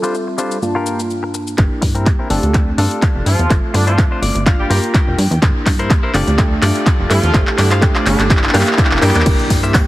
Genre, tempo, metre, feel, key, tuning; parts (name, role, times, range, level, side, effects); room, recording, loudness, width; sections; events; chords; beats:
filtered disco house; 125 BPM; 4/4; swing 54% on 16ths; G dorian; A4 = 440 Hz
reed electric piano; accompaniment; 0.0-9.9 s; G2 to A5; -20 LUFS; right 1 dB; overdrive, phaser, sidechain pumping, low-pass filter
direct-recorded clean electric guitar; riff; 0.0-9.8 s; G3 to G5; -23 LUFS; left 3 dB; vintage 12-bit sampler grit, sidechain pumping, low-pass filter
punchy analog drum machine; drums; 0.0-9.8 s; crash cymbal, handclaps, hi-hat, shaker; -20 LUFS; equal; sidechain pumping on perc, sidechain pumping on hats, sidechain pumping on cymbals
tambourine; percussion; 0.0-1.6, 9.3-9.8 s; -34 LUFS; right 4 dB
plucky analog bass; bass; 1.6-9.8 s; F1 to G2; -17 LUFS; equal; sidechain pumping, low-pass filter
electronic kick drum; drums; 1.6-9.8 s; -14 LUFS; equal; overdrive
bright horn section; melody; 3.3-9.3 s; D3 to G4; -22 LUFS; equal; sidechain pumping, low-pass filter, digital delay
impact; sound effects; 9.4-9.9 s; -25 LUFS; equal
light reverb; heavily compressed radio sound; -12 LUFS; side -16 dB against mid
0.0-1.6 A section; 1.6-9.3 B section
build-up 1.6-9.3; drum fill 1.6-9.3; filter sweep 1.6-9.3; clean electric guitar fill 4.0-5.4; impact 9.3-9.9
0.0 Dm7/G; 0.6 Gm7; 1.6 C7/G; 2.3 F6/G; 3.5 Dm7/G; 4.5 Gm7; 5.4 C7/G; 6.1 F6/G; 7.3 Dm7/G; 8.3 Gm7; 9.3 C7/G
0.14 0.62 1.10 | 1.58 2.06 2.54 3.02 | 3.50 3.98 4.46 4.94 | 5.42 5.90 6.38 6.86 | 7.34 7.82 8.30 8.78 | 9.26 9.74